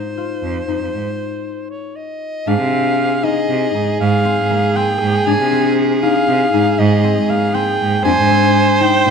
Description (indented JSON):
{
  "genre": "contemporary instrumental, chamber music in an uneven meter",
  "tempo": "237 BPM (eighths)",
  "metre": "11/8",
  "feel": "straight",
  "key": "Ab lydian",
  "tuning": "A4 = 440 Hz",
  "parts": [
    { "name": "clear soprano saxophone", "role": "melody", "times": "0.0-9.1 s", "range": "C5 to Ab5", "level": "-19 LUFS", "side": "equal", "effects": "none" },
    { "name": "concert harp", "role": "arpeggios", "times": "0.0-9.1 s", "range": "Bb3 to F4", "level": "-20 LUFS", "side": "left 8 dB", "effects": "none" },
    { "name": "clear cello", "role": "bass", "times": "0.4-9.1 s", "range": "F2 to C3", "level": "-19 LUFS", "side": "right 5 dB", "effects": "none" },
    { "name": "warm viola", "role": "second line", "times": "2.5-9.1 s", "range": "Ab4 to C5", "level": "-19 LUFS", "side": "right 3 dB", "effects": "none" }
  ],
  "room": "moderate recital hall reverb, RT60 1.3 s",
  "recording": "none",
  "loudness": "-13 LUFS",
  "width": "side -6 dB against mid",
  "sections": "0.0-2.5 A section; 2.5-9.1 B section",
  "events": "stop 1.1-2.5",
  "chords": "0.0 Ab (rootless); 2.5 Ab; 8.1 Fm7 (rootless)"
}